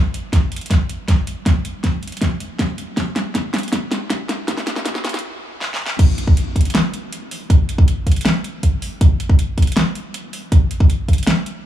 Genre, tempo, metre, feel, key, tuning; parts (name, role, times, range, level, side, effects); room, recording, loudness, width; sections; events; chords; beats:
future bass; 159 BPM; 4/4; half-time
pop drum kit; drums; 0.1-11.5 s; crash cymbal, hi-hat, snare drum; -22 LUFS; equal
electronic kick drum; drums; 0.3-11.2 s; -14 LUFS; equal
little or no reverb; high-pass filter, small room ambience; -16 LUFS; side -12 dB against mid
0.0-6.0 A section; 6.0-11.7 B section
build-up 0.0-6.0; drum fill 0.0-5.2, 5.6-6.0; filter sweep 0.0-6.0; stop 5.2-6.0; drop 6.0-11.7
0.33 0.71 1.08 | 1.46 1.84 2.22 2.59 | 2.97 3.35 3.73 4.10 | 4.48 4.86 5.24 5.61 | 5.99 6.37 6.75 7.12 | 7.50 7.88 8.26 8.63 | 9.01 9.39 9.76 10.14 | 10.52 10.90 11.27